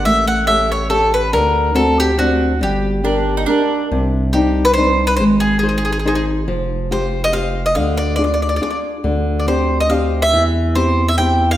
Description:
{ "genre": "italian folk, Italian serenade", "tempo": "140 BPM", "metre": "3/4", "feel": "swing 55% on 8ths", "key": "G harmonic minor", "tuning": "A4 = 440 Hz", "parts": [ { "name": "bowl-back mandolin", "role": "melody", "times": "0.0-11.6 s", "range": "F#4 to G5", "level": "-17 LUFS", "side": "equal", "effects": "none" }, { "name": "round analog bass", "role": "bass", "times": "0.0-11.6 s", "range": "F1 to E2", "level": "-20 LUFS", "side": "equal", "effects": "none" }, { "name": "flamenco guitar", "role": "accompaniment", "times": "0.1-11.5 s", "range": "C3 to C#5", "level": "-19 LUFS", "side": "left 2 dB", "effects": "none" }, { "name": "mandolin", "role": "second line", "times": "3.0-3.9 s", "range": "D4 to Eb4", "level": "-20 LUFS", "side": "right 5 dB", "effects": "none" } ], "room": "wet recital hall reverb, RT60 1.4 s", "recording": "none", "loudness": "-14 LUFS", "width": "side -13 dB against mid", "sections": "0.0-3.9 A section; 3.9-11.6 B section", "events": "none", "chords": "0.1 A7; 1.3 D7; 2.6 Gm; 3.9 Cmadd9; 5.2 Ab; 6.5 Fsus2; 7.7 Ddim; 9.0 Gsus4/D; 10.3 C/E", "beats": "| 0.05 0.48 0.90 | 1.33 1.75 2.18 | 2.61 3.04 3.48 | 3.91 4.34 4.77 | 5.20 5.62 6.05 | 6.47 6.90 7.32 | 7.75 8.18 8.61 | 9.04 9.47 9.90 | 10.33 10.75 11.18" }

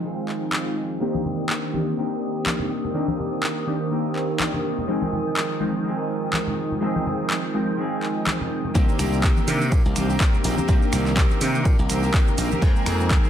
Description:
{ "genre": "filtered disco house", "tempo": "124 BPM", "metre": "4/4", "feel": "swing 57% on 16ths", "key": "C minor", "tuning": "A4 = 441 Hz", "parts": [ { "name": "funky polysynth comp", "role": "accompaniment", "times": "0.0-13.3 s", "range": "Eb3 to G5", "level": "-27 LUFS", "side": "equal", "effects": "chorus, phaser, sidechain pumping, low-pass filter" }, { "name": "clear studio string section", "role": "sustained chords", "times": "0.0-13.3 s", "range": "Eb3 to Eb6", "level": "-32 LUFS", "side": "right 2 dB", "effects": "vintage 12-bit sampler grit, sidechain pumping, low-pass filter" }, { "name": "clean electric guitar", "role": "riff", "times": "0.0-13.3 s", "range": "Eb3 to Ab4", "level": "-28 LUFS", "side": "right 1 dB", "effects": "vintage 12-bit sampler grit, sidechain pumping, low-pass filter" }, { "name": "punchy analog drum machine", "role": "drums", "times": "0.3-13.3 s", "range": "finger snaps, handclaps, hi-hat, shaker", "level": "-27 LUFS", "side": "equal", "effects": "none" }, { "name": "tambourine and congas", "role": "percussion", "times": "1.0-13.3 s", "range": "none", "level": "-31 LUFS", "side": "left 2 dB", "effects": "sidechain pumping on perc, low-pass filter on perc" }, { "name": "glassy slap bass", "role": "bass", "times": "8.8-13.2 s", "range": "Bb1 to C3", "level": "-24 LUFS", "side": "equal", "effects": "sidechain pumping, low-pass filter" }, { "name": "electronic kick drum", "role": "drums", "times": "8.8-13.2 s", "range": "none", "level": "-19 LUFS", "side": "equal", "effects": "none" } ], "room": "light reverb, digital ambience", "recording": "none", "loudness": "-20 LUFS", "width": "side -10 dB against mid", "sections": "0.0-8.8 A section; 8.8-13.3 B section", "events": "filter sweep 0.0-8.8; drop 8.8-13.3", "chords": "0.0 Fm7; 1.0 Cm7; 4.9 Fm7; 8.8 Cm7; 12.6 Fm7", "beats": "0.04 0.53 | 1.01 1.49 1.98 2.46 | 2.95 3.43 3.91 4.40 | 4.88 5.37 5.85 6.33 | 6.82 7.30 7.78 8.27 | 8.75 9.24 9.72 10.20 | 10.69 11.17 11.65 12.14 | 12.62 13.11" }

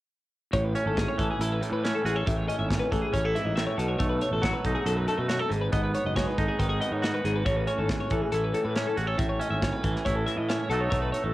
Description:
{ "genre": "math rock and midwest emo", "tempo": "139 BPM", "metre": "4/4", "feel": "straight", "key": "A lydian", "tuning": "A4 = 440 Hz", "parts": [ { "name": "twangy electric guitar", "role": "accompaniment", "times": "0.5-11.3 s", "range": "F#2 to A4", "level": "-30 LUFS", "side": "right 3 dB", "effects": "cassette tape" }, { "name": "twelve-string electric guitar", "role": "arpeggios", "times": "0.5-11.3 s", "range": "F#4 to E5", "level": "-30 LUFS", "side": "left 2 dB", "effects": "wide subtle chorus, cassette tape, tape echo" }, { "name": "fuzz fingered electric bass", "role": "bass", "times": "0.5-11.3 s", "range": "F#1 to B2", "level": "-30 LUFS", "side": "equal", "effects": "overdrive" }, { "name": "modern studio drum kit", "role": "drums", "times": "0.5-11.2 s", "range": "hi-hat, kick drum, snare drum", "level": "-31 LUFS", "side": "equal", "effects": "cassette tape" } ], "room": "studio reverb", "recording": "home recording on cassette", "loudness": "-24 LUFS", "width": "side -16 dB against mid", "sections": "0.5-11.3 A section", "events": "none", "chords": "0.5 Amaj7; 3.8 B7; 5.5 G#m7; 7.5 Amaj7; 10.7 B7", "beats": "| 0.54 0.97 1.40 1.84 | 2.27 2.70 3.13 3.57 | 4.00 4.43 4.87 5.30 | 5.73 6.16 6.60 7.03 | 7.46 7.89 8.33 8.76 | 9.19 9.62 10.05 10.49 | 10.92" }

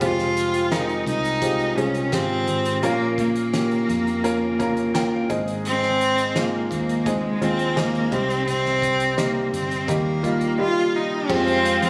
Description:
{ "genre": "piano-driven pop", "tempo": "85 BPM", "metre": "4/4", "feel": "straight", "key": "F minor", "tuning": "A4 = 440 Hz", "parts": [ { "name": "rich cello", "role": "melody", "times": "0.0-11.9 s", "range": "Ab3 to F4", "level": "-25 LUFS", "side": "equal", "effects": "delay" }, { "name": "warm upright piano", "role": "accompaniment", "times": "0.0-11.9 s", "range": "Ab2 to Bb5", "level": "-26 LUFS", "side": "equal", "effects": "none" }, { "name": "vintage muted picked electric bass", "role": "bass", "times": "0.0-11.9 s", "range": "F1 to F2", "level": "-32 LUFS", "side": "equal", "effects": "none" }, { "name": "loose indie drum kit", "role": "drums", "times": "0.0-11.9 s", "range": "crash cymbal, hi-hat, kick drum, snare drum", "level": "-34 LUFS", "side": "equal", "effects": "none" }, { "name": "muted French horn section", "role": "second line", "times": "11.3-11.9 s", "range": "F3 to F4", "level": "-31 LUFS", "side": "equal", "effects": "none" }, { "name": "chorused pulse-width pad", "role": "sustained chords", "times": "11.3-11.9 s", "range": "Ab3 to G5", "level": "-32 LUFS", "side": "equal", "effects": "none" } ], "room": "light reverb, small room reverb", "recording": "recorded on a phone in the room, studio reverb, compression", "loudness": "-22 LUFS", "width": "mono", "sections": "0.0-11.3 A section", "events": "upright piano fill 4.2-5.7", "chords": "0.0 Fmadd9; 2.8 Bbm; 5.3 Ab; 8.1 Cm; 9.9 Eb; 11.3 Fmadd9", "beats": "| 0.01 0.72 1.42 2.13 | 2.83 3.54 4.24 4.95 | 5.65 6.36 7.06 7.77 | 8.47 9.18 9.88 10.59 | 11.29" }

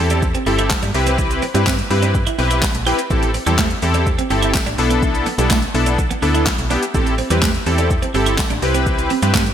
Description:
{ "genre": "dance-pop", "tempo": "125 BPM", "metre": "4/4", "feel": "straight", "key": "A minor", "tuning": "A4 = 441 Hz", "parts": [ { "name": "big bright polysynth", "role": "accompaniment", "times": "0.0-9.4 s", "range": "B3 to B4", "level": "-19 LUFS", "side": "left 1 dB", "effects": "chorus, sidechain pumping" }, { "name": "slap-like FM bass", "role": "bass", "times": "0.0-9.5 s", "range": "G1 to G2", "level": "-20 LUFS", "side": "equal", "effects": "sidechain pumping" }, { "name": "twelve-string electric guitar", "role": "riff", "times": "0.1-9.4 s", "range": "G3 to G4", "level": "-25 LUFS", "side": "right 6 dB", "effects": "wide subtle chorus" }, { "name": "deep house drum kit", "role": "drums", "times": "0.1-9.5 s", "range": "handclaps, hi-hat, kick drum, shaker, snare drum", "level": "-21 LUFS", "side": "equal", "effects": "overdrive, gated reverb" }, { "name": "tambourine", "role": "percussion", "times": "0.7-9.5 s", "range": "none", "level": "-35 LUFS", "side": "left 7 dB", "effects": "none" } ], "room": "light reverb", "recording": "bright 1980s-style digital production", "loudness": "-15 LUFS", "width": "side -9 dB against mid", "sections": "0.0-9.5 A section", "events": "none", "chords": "0.0 Am7; 0.9 Cmaj7; 3.1 Am7; 4.8 E7sus4/B; 6.9 Am7; 8.6 Cmaj7", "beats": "0.23 0.70 | 1.19 1.67 2.15 2.62 | 3.10 3.58 4.07 4.54 | 5.03 5.50 5.99 6.46 | 6.95 7.42 7.91 8.38 | 8.87 9.35" }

